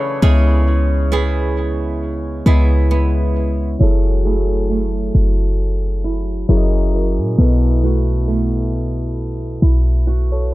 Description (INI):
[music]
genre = R&B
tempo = 67 BPM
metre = 4/4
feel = swing 54% on 16ths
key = F# minor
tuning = A4 = 440 Hz
[part]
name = soft electric-piano-like synth keys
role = accompaniment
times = 0.0-10.5 s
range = B2 to D#5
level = -22 LUFS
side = left 2 dB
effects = chorus, analog delay
[part]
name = flamenco guitar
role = arpeggios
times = 0.0-10.5 s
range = F#2 to G#4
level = -24 LUFS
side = right 6 dB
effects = analog delay
[part]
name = clean 808-style bass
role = bass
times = 0.2-10.5 s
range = F#1 to A#2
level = -16 LUFS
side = equal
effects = none
[sound]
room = little or no reverb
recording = echo-heavy mix, low-pass filter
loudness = -14 LUFS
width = side -18 dB against mid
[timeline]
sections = 0.0-3.8 A section; 3.8-10.5 B section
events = synth keys solo 0.0-3.8; filter sweep 3.8-10.5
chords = 0.0 C#m7; 3.8 F#m9; 6.5 F#13; 7.4 B7sus4